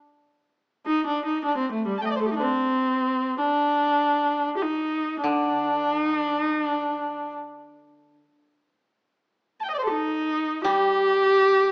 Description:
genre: japanese traditional, Japanese chamber music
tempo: free time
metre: none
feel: none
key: D in sen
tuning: A4 = 440 Hz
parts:
  - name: warm viola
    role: melody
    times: 0.9-11.7 s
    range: G3 to A5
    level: -21 LUFS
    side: equal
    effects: none
  - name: koto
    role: accompaniment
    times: 5.2-11.7 s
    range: D3 to G3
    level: -27 LUFS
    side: equal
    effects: none
room: moderate recital hall reverb, RT60 1.5 s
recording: small speaker sound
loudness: -21 LUFS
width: side -38 dB against mid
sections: 0.0-11.7 A section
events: none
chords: none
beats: free time

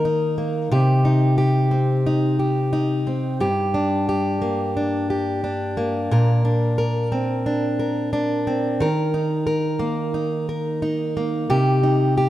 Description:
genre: pop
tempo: 89 BPM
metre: 4/4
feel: straight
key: unclear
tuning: A4 = 440 Hz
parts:
  - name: fingerpicked plugged-in steel-string acoustic guitar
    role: solo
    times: 0.0-12.3 s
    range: G2 to Bb4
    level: -19 LUFS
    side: equal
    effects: none
room: moderate lush hall reverb, RT60 2.4 s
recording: rough home demo mix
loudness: -19 LUFS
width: side -14 dB against mid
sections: 0.0-12.3 A section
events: none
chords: 0.0 Eb5; 0.7 Cm; 3.4 Gm; 6.1 Bbadd9; 8.8 Eb5; 11.5 Cm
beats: 0.05 | 0.72 1.39 2.06 2.74 | 3.41 4.08 4.76 5.43 | 6.10 6.78 7.45 8.12 | 8.80 9.47 10.14 10.81 | 11.49 12.16

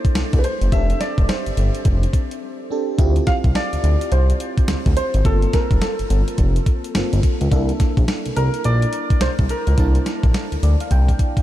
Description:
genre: R&B, new jack swing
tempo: 106 BPM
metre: 4/4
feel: swing 62% on 16ths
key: unclear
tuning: A4 = 442 Hz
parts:
  - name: warm baby grand piano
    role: melody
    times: 0.0-11.2 s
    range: A4 to F5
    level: -26 LUFS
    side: right 1 dB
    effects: analog chorus, ping-pong delay
  - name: FM electric piano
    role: accompaniment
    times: 0.0-11.4 s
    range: Bb3 to A5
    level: -26 LUFS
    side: equal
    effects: chorus, phaser
  - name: crisp 8-bit digital drum machine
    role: drums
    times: 0.0-11.4 s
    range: hi-hat, kick drum, snare drum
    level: -20 LUFS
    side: equal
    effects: none
  - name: smooth synth bass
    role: bass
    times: 0.2-11.1 s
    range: F1 to D2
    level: -18 LUFS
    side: equal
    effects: none
room: light reverb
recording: none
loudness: -16 LUFS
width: side -14 dB against mid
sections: 0.0-11.4 A section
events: break 2.4-3.0; FM electric piano fill 10.3-11.4; drum fill 10.9-11.4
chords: 0.0 C13; 0.7 F69; 3.0 Dm11; 5.3 Gm11; 7.5 C13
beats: 0.16 | 0.72 1.29 1.85 2.42 | 2.99 3.55 4.12 4.68 | 5.25 5.82 6.38 6.95 | 7.51 8.08 8.65 9.21 | 9.78 10.35 10.91

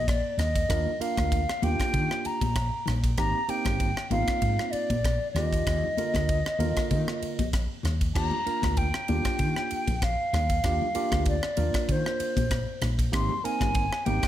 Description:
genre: electric jazz fusion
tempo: 96 BPM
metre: 4/4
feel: swing 54% on 16ths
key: Eb major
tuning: A4 = 440 Hz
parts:
  - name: hollow concert flute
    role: melody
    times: 0.0-14.3 s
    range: C5 to C6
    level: -30 LUFS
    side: left 1 dB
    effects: none
  - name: woody fretless electric bass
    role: bass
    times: 0.0-14.3 s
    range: G1 to Eb3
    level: -29 LUFS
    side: equal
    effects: none
  - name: crisp fusion drum kit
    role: drums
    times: 0.1-14.3 s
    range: crash cymbal, kick drum, ride cymbal, rim click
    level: -30 LUFS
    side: equal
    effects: none
  - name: congas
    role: percussion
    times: 0.4-14.2 s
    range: none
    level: -35 LUFS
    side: left 5 dB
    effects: none
  - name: barky tine electric piano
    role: accompaniment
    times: 0.7-14.3 s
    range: D3 to Bb4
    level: -33 LUFS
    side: right 4 dB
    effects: none
room: light reverb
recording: none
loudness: -24 LUFS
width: side -12 dB against mid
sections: 0.0-8.2 A section; 8.2-14.3 A section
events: none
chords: 0.0 Ebmaj9; 3.2 Abmaj9; 5.4 Ebmaj9; 13.1 Abmaj9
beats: 0.07 | 0.69 1.32 1.94 2.56 | 3.18 3.80 4.42 5.04 | 5.67 6.29 6.91 7.53 | 8.15 8.78 9.40 10.02 | 10.64 11.26 11.88 12.51 | 13.13 13.75

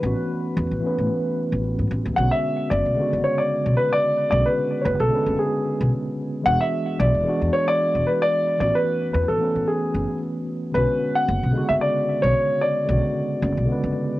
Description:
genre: sunset chillout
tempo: 112 BPM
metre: 4/4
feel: swing 55% on 16ths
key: B dorian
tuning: A4 = 440 Hz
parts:
  - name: dark concert grand piano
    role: melody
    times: 0.0-14.2 s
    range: G#4 to F#5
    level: -22 LUFS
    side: equal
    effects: cassette tape, tape echo
  - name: mellow tine electric piano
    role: accompaniment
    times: 0.0-14.2 s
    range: C#3 to B4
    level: -25 LUFS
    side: equal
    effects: auto-pan
  - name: upright bass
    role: bass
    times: 0.0-13.9 s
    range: E1 to A2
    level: -24 LUFS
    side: equal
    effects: none
room: moderate booth ambience, RT60 0.2 s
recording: home recording on cassette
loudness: -19 LUFS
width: side -17 dB against mid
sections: 0.0-14.2 A section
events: none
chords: 0.0 A69; 2.2 Bm69; 6.5 E9; 8.6 A69; 10.7 Bm69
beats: | 0.03 0.57 1.10 1.64 | 2.18 2.71 3.25 3.78 | 4.32 4.86 5.39 5.93 | 6.46 7.00 7.53 8.07 | 8.61 9.14 9.68 10.21 | 10.75 11.28 11.82 12.36 | 12.89 13.43 13.96

